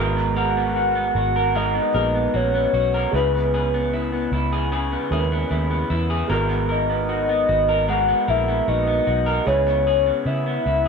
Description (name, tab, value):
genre	indie pop, bedroom pop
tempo	76 BPM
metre	4/4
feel	straight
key	C# dorian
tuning	A4 = 437 Hz
part	electric guitar through a small old amp	accompaniment	0.0-10.9 s	C#3 to A#4	-24 LUFS	equal	lush chorus, warbly pitch drift
part	warm upright piano	accompaniment	0.0-10.9 s	G#3 to B4	-31 LUFS	right 4 dB	none
part	vintage muted fingered electric bass	bass	0.0-10.9 s	G#1 to C#3	-24 LUFS	right 1 dB	none
part	soft octave-layered synth lead	melody	0.4-10.9 s	B4 to F#5	-20 LUFS	left 2 dB	phaser, wide subtle chorus
room	moderate spring reverb, RT60 2.6 s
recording	none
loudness	-18 LUFS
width	side -5 dB against mid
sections	0.0-10.9 A section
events	none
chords	0.0 G#m9; 3.1 C#m7; 6.3 G#m9; 9.5 C#m7